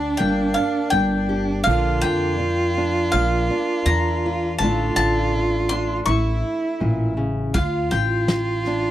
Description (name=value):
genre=acoustic folk duo or small band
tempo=82 BPM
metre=4/4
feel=straight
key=D minor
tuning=A4 = 438 Hz
part: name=bowl-back mandolin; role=melody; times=0.0-8.9 s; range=F5 to C#6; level=-24 LUFS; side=left 1 dB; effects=none
part: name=warm cello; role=second line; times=0.0-8.9 s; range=D4 to F4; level=-24 LUFS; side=right 3 dB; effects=none
part: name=fingerpicked steel-string acoustic guitar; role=accompaniment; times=0.0-8.9 s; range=D2 to G4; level=-26 LUFS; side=left 1 dB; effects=none
part: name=upright bass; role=bass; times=0.0-8.9 s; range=G1 to F2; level=-23 LUFS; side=equal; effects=none
part: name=soft brush drum kit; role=drums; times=7.5-8.7 s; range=kick drum, snare drum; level=-22 LUFS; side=equal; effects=none
room=light reverb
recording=dry, close 1970s-style studio recording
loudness=-18 LUFS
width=side -12 dB against mid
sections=0.0-8.9 A section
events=none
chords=0.0 Gm; 1.7 Bb; 4.6 Dm/A; 6.1 A; 7.5 Dm